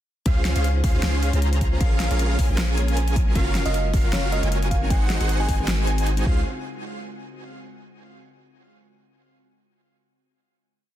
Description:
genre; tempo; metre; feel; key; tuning
future bass; 155 BPM; 4/4; swing 55% on 16ths, half-time; Db major; A4 = 440 Hz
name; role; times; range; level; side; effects
airy breathy pad; sustained chords; 0.3-6.4 s; Db3 to F5; -38 LUFS; right 1 dB; none
airy dreamy lead; arpeggios; 0.3-6.4 s; F5 to Bb5; -34 LUFS; left 1 dB; chorus, sidechain pumping, digital delay
supersaw chords; riff; 0.3-6.4 s; Db4 to Bb5; -29 LUFS; right 1 dB; sidechain pumping, digital delay
long sustained 808-style bass; bass; 0.3-6.4 s; Gb1 to Db2; -22 LUFS; equal; sidechain pumping
electronic kick drum; drums; 0.3-6.3 s; none; -22 LUFS; equal; none
pop drum kit; drums; 0.3-6.2 s; hi-hat, snare drum; -30 LUFS; left 1 dB; none
glassy digital keys; accompaniment; 0.4-6.4 s; Ab3 to Db5; -34 LUFS; left 2 dB; chorus, sidechain pumping, digital delay
bell-like FM electric piano; melody; 3.7-5.9 s; Db5 to Ab5; -32 LUFS; right 3 dB; chorus, sidechain pumping, digital delay
room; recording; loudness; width
little or no reverb; dense, heavily limited modern master; -19 LUFS; side -12 dB against mid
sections
0.3-6.5 drop; 6.5-8.0 final hit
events
drop 0.3-6.5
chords
0.3 Dbmaj7; 1.8 Bbm7; 3.4 Gbmaj7; 4.9 Ab7; 6.3 Dbmaj7; 6.5 N.C.

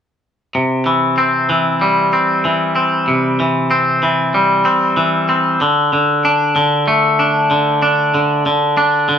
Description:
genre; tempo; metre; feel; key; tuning
rock; 95 BPM; 4/4; straight; unclear; A4 = 439 Hz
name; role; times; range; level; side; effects
twangy electric guitar; solo; 0.6-9.2 s; C3 to D4; -12 LUFS; equal; none
room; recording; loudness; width
moderate studio reverb, RT60 0.6 s; band playing live in one room; -12 LUFS; side -8 dB against mid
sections
0.5-9.2 A section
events
none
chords
0.5 C; 5.6 D5

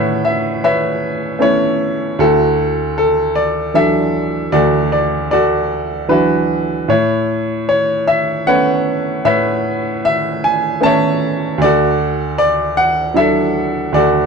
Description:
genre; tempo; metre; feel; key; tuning
acoustic folk-pop ballad; 77 BPM; 3/4; straight; A major; A4 = 443 Hz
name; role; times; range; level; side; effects
clear upright piano; solo; 0.0-14.3 s; D2 to A5; -13 LUFS; equal; none
room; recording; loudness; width
moderate studio reverb, RT60 0.6 s; dark, warm production; -13 LUFS; side -5 dB against mid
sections
0.0-14.3 A section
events
none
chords
0.0 Aadd9; 2.2 Dadd9; 6.9 Aadd9; 11.6 Dadd9

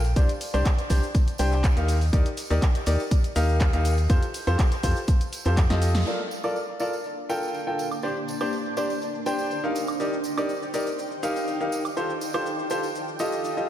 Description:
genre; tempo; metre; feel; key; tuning
piano house; 122 BPM; 4/4; straight; Bb major; A4 = 440 Hz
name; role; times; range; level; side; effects
organ-like FM bass; bass; 0.0-6.0 s; Bb1 to F2; -22 LUFS; equal; tube saturation, sidechain pumping
punchy analog drum machine; drums; 0.0-13.7 s; cabasa, handclaps, hi-hat, snare drum, woodblock; -35 LUFS; right 1 dB; low-pass filter on hats, low-pass filter on perc, low-pass filter on snare
tambourine; percussion; 0.0-13.5 s; none; -42 LUFS; right 5 dB; none
clear grand piano; riff; 0.2-13.7 s; D4 to G5; -27 LUFS; left 1 dB; sidechain pumping, low-pass filter, diffuse ambient delay
electronic kick drum; drums; 0.2-5.7 s; none; -21 LUFS; equal; none
granular cloud pad; texture; 7.1-13.7 s; Bb3 to A5; -32 LUFS; right 1 dB; built-in reverb, analog chorus, sidechain pumping
room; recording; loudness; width
light reverb, digital ambience; none; -22 LUFS; side -11 dB against mid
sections
0.0-6.1 A section; 6.1-13.7 B section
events
drum fill 5.7-6.1; band accent 5.9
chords
0.2 Csus2; 1.9 Ebmaj7; 4.1 Fadd9; 6.1 Bbmaj7; 8.0 Csus2; 9.8 Ebmaj7; 12.0 Fadd9

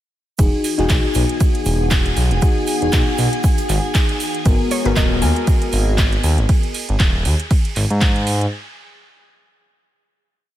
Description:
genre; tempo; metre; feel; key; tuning
deep house; 118 BPM; 4/4; swing 56% on 16ths; G# minor; A4 = 435 Hz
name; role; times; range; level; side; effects
mellow FM electric piano; stabs; 0.4-6.5 s; B3 to A#4; -22 LUFS; left 3 dB; chorus, sidechain pumping, analog delay
smooth synth bass; bass; 0.4-8.5 s; D#1 to G#2; -18 LUFS; equal; tube saturation, sidechain pumping
big rock drum kit; drums; 0.4-6.4 s; hi-hat, shaker, snare drum; -35 LUFS; right 4 dB; none
electronic kick drum; drums; 0.4-8.1 s; none; -16 LUFS; equal; overdrive
house drum kit; drums; 0.4-8.5 s; handclaps, hi-hat, ride cymbal; -24 LUFS; right 2 dB; none
string machine, violins; texture; 0.4-8.5 s; G#4 to G#5; -31 LUFS; right 1 dB; ensemble chorus, sidechain pumping
warbly tape-like pad; texture; 0.7-6.5 s; E3 to G#5; -30 LUFS; equal; chorus, built-in reverb, sidechain pumping
warm analog pad; sustained chords; 4.5-6.5 s; G#3 to A#4; -32 LUFS; right 2 dB; chorus, sidechain pumping
mallet-like synth pluck; melody; 4.7-8.0 s; B4 to G#5; -28 LUFS; equal; chorus, analog delay
room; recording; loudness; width
light reverb, digital ambience; none; -15 LUFS; side -13 dB against mid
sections
0.4-8.5 drop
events
drop 0.4-8.5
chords
0.4 Emaj7; 4.5 G#m9

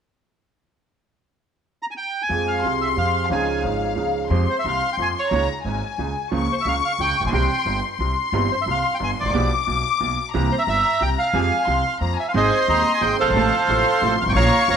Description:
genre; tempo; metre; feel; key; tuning
tango; 179 BPM; 3/4; rubato; F harmonic minor; A4 = 442 Hz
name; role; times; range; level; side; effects
bandoneon; melody; 1.8-14.8 s; A4 to Db6; -21 LUFS; right 3 dB; none
rich studio violin section; second line; 2.3-14.8 s; F5 to D6; -24 LUFS; left 8 dB; none
bright upright piano; accompaniment; 2.3-14.8 s; Eb1 to Ab4; -26 LUFS; right 7 dB; none
upright bass; bass; 2.3-14.8 s; F1 to F2; -25 LUFS; left 1 dB; none
room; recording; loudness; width
moderate echo chamber reverb, RT60 1.6 s, small room ambience; 1960s-style stereo with parts hard left and right; -18 LUFS; side -7 dB against mid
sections
1.3-2.3 A section; 2.3-4.3 B section; 4.3-12.3 C section; 12.3-14.8 D section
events
none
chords
1.3 N.C.; 2.3 Fmadd9; 3.3 Dbadd9; 4.3 Fmadd9; 5.3 Dbadd9; 6.3 Bbm/Db; 7.3 C; 9.3 G7/B; 10.3 C7; 11.3 Fmadd9; 12.3 Ab; 13.4 F/A

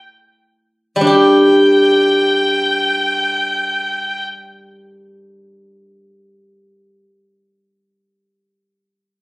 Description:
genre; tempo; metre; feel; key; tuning
chinese traditional, Chinese chamber ensemble; free time; none; none; unclear; A4 = 441 Hz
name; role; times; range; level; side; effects
steel-string zither; accompaniment; 1.0-7.0 s; G3 to G4; -12 LUFS; equal; none
clear erhu; melody; 1.1-4.2 s; G5; -17 LUFS; equal; none
room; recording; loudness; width
moderate recital hall reverb, RT60 1.3 s; recorded on a phone in the room, studio reverb; -12 LUFS; side -27 dB against mid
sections
0.0-1.1 A section; 1.1-6.2 B section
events
slowing down 0.0-1.1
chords
none

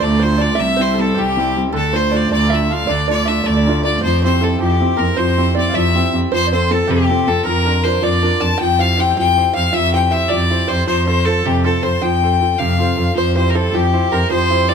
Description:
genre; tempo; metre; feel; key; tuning
celtic folk, Celtic jig; 105 BPM (dotted quarters); 6/8; straight; D minor; A4 = 440 Hz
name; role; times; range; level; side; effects
bright fiddle; melody; 0.0-14.7 s; G4 to A5; -18 LUFS; left 3 dB; plate reverb, tape echo
accordion; second line; 0.0-14.7 s; G4 to A5; -26 LUFS; left 3 dB; tape echo
open-back banjo; second line; 0.0-14.7 s; G4 to A5; -25 LUFS; right 7 dB; none
bright concert grand piano; accompaniment; 0.0-14.7 s; C3 to C5; -20 LUFS; right 2 dB; none
muted cello; bass; 0.0-14.7 s; C2 to F2; -18 LUFS; equal; none
room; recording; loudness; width
moderate small room reverb, RT60 0.5 s; none; -13 LUFS; side -6 dB against mid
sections
0.0-4.0 A section; 4.0-13.2 B section; 13.2-14.7 B section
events
none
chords
0.0 Dm; 0.6 C; 1.7 Dm; 4.0 C/F; 6.3 F; 7.5 Bb/F; 8.6 C/F; 10.9 F; 13.2 C/F

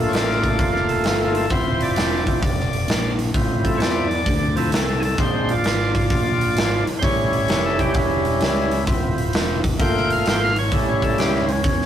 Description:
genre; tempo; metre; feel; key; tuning
blues rock power trio and southern rock; 130 BPM; 4/4; swing 66% on 8ths; D minor; A4 = 440 Hz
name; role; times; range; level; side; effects
overdriven tonewheel organ; sustained chords; 0.0-11.9 s; F3 to G5; -21 LUFS; equal; slow rotary speaker
growling fingered electric bass; bass; 0.0-11.9 s; D1 to E2; -25 LUFS; equal; overdrive
big rock drum kit; drums; 0.1-11.9 s; hi-hat, kick drum, snare drum; -22 LUFS; equal; none
room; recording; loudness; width
wet small room reverb, RT60 0.5 s; rough rehearsal-room recording, warm saturation; -17 LUFS; side -10 dB against mid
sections
0.0-11.9 A section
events
tonewheel organ solo 0.0-11.9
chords
0.0 Gm9; 1.5 Dm9; 5.2 Bb7; 7.0 A7; 8.9 Dm9; 9.8 Gm9; 10.7 A7

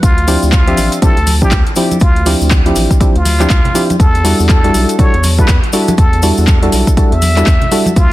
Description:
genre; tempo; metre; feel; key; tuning
deep house; 121 BPM; 4/4; swing 60% on 16ths; unclear; A4 = 440 Hz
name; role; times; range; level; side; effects
trumpet with plunger mute; melody; 0.0-8.1 s; F4 to E5; -19 LUFS; equal; digital delay
round analog bass; bass; 0.0-8.1 s; A1 to E2; -14 LUFS; equal; sidechain pumping
deep house drum kit; drums; 0.0-8.1 s; handclaps, hi-hat; -20 LUFS; left 1 dB; overdrive
electronic kick drum; drums; 0.0-8.1 s; none; -11 LUFS; equal; overdrive
cabasa; percussion; 0.0-8.1 s; none; -25 LUFS; left 4 dB; none
percussive organ stab; stabs; 0.3-7.9 s; F3 to E5; -15 LUFS; equal; chorus, sidechain pumping, digital delay
congas; percussion; 1.0-7.9 s; none; -20 LUFS; equal; sidechain pumping on perc
room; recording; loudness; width
light reverb; dense, heavily limited modern master, vinyl crackle; -8 LUFS; side -16 dB against mid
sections
0.0-8.1 A section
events
none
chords
0.0 Dm11; 4.0 Em11

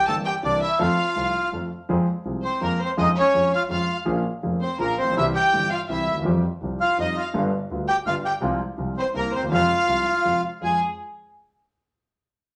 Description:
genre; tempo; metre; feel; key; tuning
tango; 165 BPM; 3/4; rubato; F minor; A4 = 439 Hz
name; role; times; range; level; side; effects
bandoneon; melody; 0.0-10.8 s; Bb3 to A5; -25 LUFS; equal; none
bright studio violin section; second line; 0.0-10.8 s; Ab4 to A5; -29 LUFS; equal; none
warm concert grand piano; accompaniment; 0.1-10.8 s; F1 to A4; -28 LUFS; equal; none
clear double bass; bass; 0.1-10.8 s; F1 to F2+20c; -37 LUFS; equal; none
room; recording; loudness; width
wet studio reverb, RT60 0.8 s; none; -23 LUFS; mono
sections
0.0-1.9 A section; 1.9-10.6 B section; 10.6-11.7 C section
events
none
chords
0.0 C7; 0.8 F; 1.9 Fm; 3.0 Db/F; 4.1 Bbm7; 5.1 C; 6.3 Fsus2; 7.3 G7; 8.4 Fm/C; 9.1 C7; 9.5 Fm

